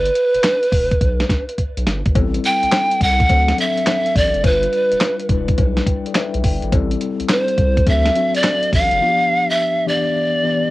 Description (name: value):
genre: R&B, new jack swing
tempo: 105 BPM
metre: 4/4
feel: swing 67% on 16ths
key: A minor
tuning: A4 = 440 Hz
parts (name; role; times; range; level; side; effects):
- breathy polished pan flute; melody; 0.0-10.7 s; B4 to G5; -17 LUFS; right 1 dB; cassette tape
- round analog bass; bass; 0.0-9.0 s; E1 to D2; -21 LUFS; equal; none
- clean 12-bit digital drum machine; drums; 0.1-9.0 s; handclaps, hi-hat, kick drum, snare drum; -18 LUFS; equal; none
- mellow tine electric piano; accompaniment; 2.1-10.7 s; E3 to G5; -23 LUFS; left 5 dB; medium stereo tremolo, tube saturation, cassette tape
- cowbell; percussion; 2.2-8.6 s; none; -30 LUFS; left 6 dB; none
room: moderate booth ambience, RT60 0.2 s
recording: home recording on cassette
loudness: -15 LUFS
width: side -18 dB against mid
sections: 0.0-10.7 A section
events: drum fill 1.6-2.2; tine electric piano fill 5.6-6.7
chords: 0.0 G; 0.7 Em; 2.2 Am7; 3.3 D7; 4.4 G7; 5.3 Em7; 6.7 Am7; 7.9 D7; 9.0 G7; 9.9 Em7